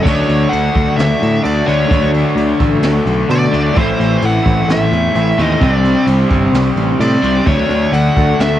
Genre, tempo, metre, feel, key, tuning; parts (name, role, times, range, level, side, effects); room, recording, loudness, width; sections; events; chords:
rock, shoegaze and dream pop; 130 BPM; 4/4; straight; A4 = 442 Hz
nasal lead guitar with a parked wah; melody; 0.0-8.6 s; C5 to F#5; -19 LUFS; equal; overdrive, tape echo
picked twelve-string acoustic guitar; arpeggios; 0.0-8.6 s; E3 to A4; -26 LUFS; left 6 dB
overdriven electric guitar; riff; 0.0-8.6 s; A2 to D4; -18 LUFS; equal; cassette tape
thick fuzz guitar; riff; 0.0-8.6 s; A2 to D4; -20 LUFS; left 6 dB; distortion, lush chorus, cassette tape
twangy electric guitar; riff; 0.0-8.6 s; A2 to E4; -21 LUFS; right 7 dB; reverse reverb, cassette tape
growling picked electric bass; bass; 0.1-8.6 s; G1 to B2; -16 LUFS; equal; overdrive, tube saturation
jazz brush drum kit; drums; 0.1-8.5 s; crash cymbal, kick drum, ride cymbal, snare drum; -21 LUFS; equal; cassette tape
small room ambience; home recording on cassette; -11 LUFS; side -12 dB against mid
0.1-8.6 A section
0.1 Dmaj7; 3.8 Am; 5.6 Csus2; 7.5 Dmaj7